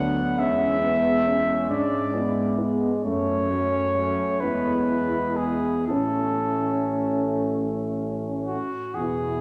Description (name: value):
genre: classical, hymn-like piece for brass band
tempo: 39-47 BPM (dotted quarters)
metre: 6/8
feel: rubato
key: A major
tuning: A4 = 440 Hz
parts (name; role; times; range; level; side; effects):
- warm cornet; melody; 0.0-9.4 s; F#4 to F#5; -28 LUFS; equal; none
- dark French horn section; second line; 0.0-9.4 s; B3 to E4; -30 LUFS; equal; none
- clear trombone section; accompaniment; 0.0-9.4 s; F#3 to B3; -33 LUFS; equal; none
- warm trombone; accompaniment; 0.0-9.4 s; B2 to C#4; -32 LUFS; equal; none
- mellow tuba; bass; 0.0-9.4 s; A1 to G#2; -34 LUFS; equal; none
room: wet scoring stage reverb, RT60 2.1 s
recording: none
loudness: -24 LUFS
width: mono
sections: 0.0-9.0 A section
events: none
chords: 0.4 E7; 3.0 F#m; 4.4 E; 5.9 A